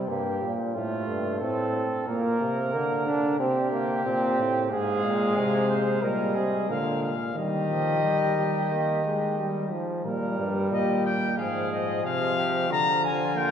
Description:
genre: classical, imitative canzona for brass ensemble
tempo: 91 BPM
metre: 4/4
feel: straight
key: Eb major from 4.7 s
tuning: A4 = 438 Hz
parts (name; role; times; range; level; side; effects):
- clear trombone; accompaniment; 0.0-13.5 s; D3 to D4; -28 LUFS; equal; none
- bright bass trombone; bass; 0.0-13.5 s; G2 to Eb3; -29 LUFS; right 1 dB; none
- warm flugelhorn; second line; 0.1-13.5 s; F4 to C5; -31 LUFS; right 3 dB; none
- dark trumpet; melody; 4.7-13.5 s; Eb5 to Bb5; -29 LUFS; left 4 dB; none
room: wet church reverb, RT60 4.1 s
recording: heard from further back in the room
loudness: -24 LUFS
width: side -8 dB against mid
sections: 0.0-10.1 A section; 10.1-13.5 B section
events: none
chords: 0.0 C5; 0.8 F; 2.1 Bb; 3.4 C5; 4.7 Fm/Ab; 6.0 Eb/Bb; 6.7 Bb; 7.4 Eb; 11.4 Fm/Ab; 12.7 Bb/D

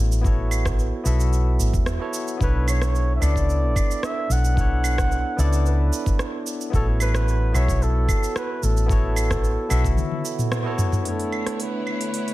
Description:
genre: sunset chillout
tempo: 111 BPM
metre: 4/4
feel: straight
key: A major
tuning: A4 = 440 Hz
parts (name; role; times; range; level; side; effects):
- barky tine electric piano; accompaniment; 0.0-12.3 s; A3 to E5; -28 LUFS; moving between left 4 dB and right 5 dB; auto-pan, tape echo
- woody fretless electric bass; bass; 0.0-10.0 s; E1 to C#2; -20 LUFS; equal; none
- smooth R&B drum kit; drums; 0.1-12.3 s; claves, hi-hat, rim click, shaker, toms; -28 LUFS; right 1 dB; none
- electronic kick drum; drums; 0.2-9.9 s; none; -22 LUFS; equal; none
- breathy flugelhorn; melody; 2.4-12.3 s; A4 to F#5; -29 LUFS; equal; digital delay
- clear studio string section; sustained chords; 11.1-12.3 s; D3 to C#5; -31 LUFS; equal; none
room: little or no reverb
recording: none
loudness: -19 LUFS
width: side -17 dB against mid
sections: 0.0-11.1 A section; 11.1-12.3 B section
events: break 10.0-11.1; drum fill 10.0-11.1; band accent 10.5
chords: 0.0 A69; 2.4 Bm11; 6.7 A69; 11.1 Bm11

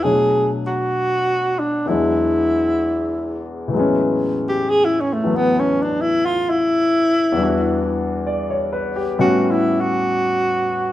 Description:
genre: jazz ballad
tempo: 66 BPM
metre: 4/4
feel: swing 69% on 8ths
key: E major, A major from 3.7 s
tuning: A4 = 440 Hz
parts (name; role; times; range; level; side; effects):
- warm alto saxophone; melody; 0.0-10.9 s; A3 to G#4; -18 LUFS; equal; none
- warm concert grand piano; accompaniment; 0.0-10.9 s; E2 to D5; -21 LUFS; left 2 dB; none
room: wet stone room reverb, RT60 1.0 s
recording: band playing live in one room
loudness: -16 LUFS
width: side -13 dB against mid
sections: 0.0-3.7 A section; 3.7-10.9 B section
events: alto saxophone solo 3.7-10.9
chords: 0.0 Bm7; 1.9 E9; 3.7 Amaj13; 7.4 Em9; 9.2 A13

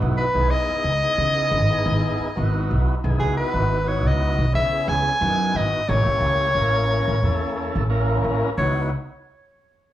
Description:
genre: electric jazz fusion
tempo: 89 BPM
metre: 4/4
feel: swing 54% on 16ths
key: unclear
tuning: A4 = 441 Hz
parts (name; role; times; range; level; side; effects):
- tonewheel organ; accompaniment; 0.0-8.9 s; Bb3 to Bb4; -26 LUFS; equal; slow rotary speaker, overdrive, slapback echo
- upright bass; bass; 0.0-8.9 s; G#1 to C#3; -22 LUFS; equal; none
- bright soprano saxophone; melody; 0.2-8.9 s; G#4 to G#5; -22 LUFS; equal; slapback echo
room: light reverb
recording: live gig heard through the venue's PA, club reverb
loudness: -19 LUFS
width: side -13 dB against mid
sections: 0.0-3.2 A section; 3.2-8.6 B section; 8.6-9.9 C section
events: none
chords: 0.0 C#m11; 5.9 A7b9; 8.6 C#m11

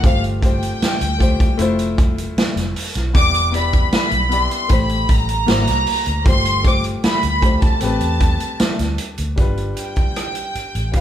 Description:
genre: lush 1970s-style soul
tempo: 77 BPM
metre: 4/4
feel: straight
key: unclear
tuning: A4 = 441 Hz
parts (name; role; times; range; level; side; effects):
- warm studio violin section; melody; 0.0-11.0 s; F5 to D6; -21 LUFS; equal; none
- clear concert grand piano; accompaniment; 0.0-11.0 s; G3 to D5; -24 LUFS; left 3 dB; none
- vintage muted fingered electric bass; bass; 0.0-11.0 s; E1 to E2; -22 LUFS; equal; none
- vintage drum kit; drums; 0.0-11.0 s; hi-hat, kick drum, rim click, snare drum; -18 LUFS; equal; none
room: moderate large studio reverb, RT60 0.9 s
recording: band playing live in one room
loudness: -15 LUFS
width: side -11 dB against mid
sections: 0.0-9.4 A section; 9.4-11.0 B section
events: none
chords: 0.0 G9sus4; 1.6 Fmaj7; 3.1 Em7; 4.7 Am7; 5.5 G#9; 6.3 G9sus4; 7.8 Am9; 9.4 G7

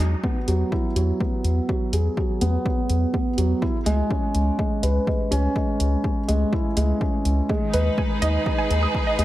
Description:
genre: piano and strings electronica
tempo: 124 BPM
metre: 4/4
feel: straight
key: unclear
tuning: A4 = 443 Hz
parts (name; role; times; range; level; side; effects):
- felt-muted upright piano; riff; 0.0-9.2 s; F#3 to D#5; -24 LUFS; right 1 dB; analog delay
- round analog bass; bass; 0.0-9.2 s; C#2 to E2; -21 LUFS; equal; sidechain pumping
- electronic kick drum; drums; 0.2-9.0 s; none; -26 LUFS; equal; overdrive
- electronic hi-hat; drums; 0.5-9.2 s; none; -32 LUFS; equal; overdrive
- bright studio string section; sustained chords; 7.5-9.2 s; D#3 to B4; -27 LUFS; equal; sidechain pumping
- analog pluck; arpeggios; 7.5-9.1 s; G#4 to D#6; -27 LUFS; right 2 dB; chorus, sidechain pumping, analog delay
room: moderate plate reverb, RT60 2.2 s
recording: dreamy mix soaked in reverb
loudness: -20 LUFS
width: side -15 dB against mid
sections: 0.0-9.2 A section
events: none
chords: 0.0 Eadd9; 3.6 C#m7; 7.5 G#m/D#

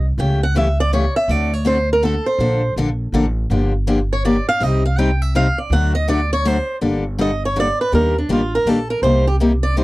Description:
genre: acoustic string swing (jazz manouche)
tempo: 163 BPM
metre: 3/4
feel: swing 62% on 8ths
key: G minor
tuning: A4 = 443 Hz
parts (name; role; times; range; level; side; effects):
- picked swing-style acoustic guitar; melody; 0.0-9.8 s; D4 to G5; -19 LUFS; right 1 dB; none
- upright bass; bass; 0.0-9.8 s; G1 to Eb2; -19 LUFS; equal; none
- picked steel-string acoustic guitar; accompaniment; 0.2-9.8 s; C3 to A4; -19 LUFS; left 2 dB; none
room: light reverb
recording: dry, close 1970s-style studio recording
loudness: -15 LUFS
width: side -19 dB against mid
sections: 0.0-6.8 A section; 6.8-9.8 A section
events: steel-string acoustic guitar solo 0.0-6.8, 6.8-9.8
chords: 0.2 A7/C#; 1.3 D7; 2.4 Bbmaj7; 3.5 Gm7; 4.6 Cm; 5.7 D; 6.8 Gmadd9; 7.9 Ebmaj7; 9.0 Cm7

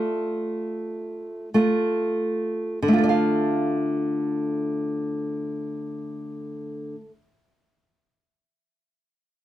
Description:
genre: classical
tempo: 30-35 BPM (dotted quarters)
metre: 6/8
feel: rubato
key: D minor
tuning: A4 = 440 Hz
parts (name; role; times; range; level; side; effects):
- nylon-string guitar; accompaniment; 0.0-7.2 s; D3 to F5; -23 LUFS; equal; none
room: light reverb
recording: none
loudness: -22 LUFS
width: side -13 dB against mid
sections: 0.0-2.8 A section; 2.8-6.5 B section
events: slowing down 0.0-2.8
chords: 0.0 Dm

